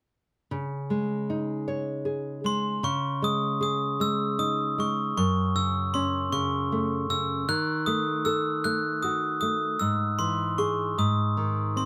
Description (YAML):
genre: children's music, lullaby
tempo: 52 BPM (dotted quarters)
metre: 6/8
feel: straight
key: C# harmonic minor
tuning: A4 = 442 Hz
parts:
  - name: nylon-string guitar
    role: accompaniment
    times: 0.5-11.9 s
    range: F#2 to C#5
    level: -30 LUFS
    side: equal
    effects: none
  - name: glockenspiel with brass mallets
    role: melody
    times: 2.5-11.9 s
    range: B#5 to F#6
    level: -29 LUFS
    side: equal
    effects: none
room: little or no reverb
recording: close, detailed microphones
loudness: -27 LUFS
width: mono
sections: 0.5-2.8 A section; 2.8-11.9 B section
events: none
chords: 0.5 C#sus2; 5.2 F#m; 7.5 D#dim; 9.8 G#aug; 11.0 G#5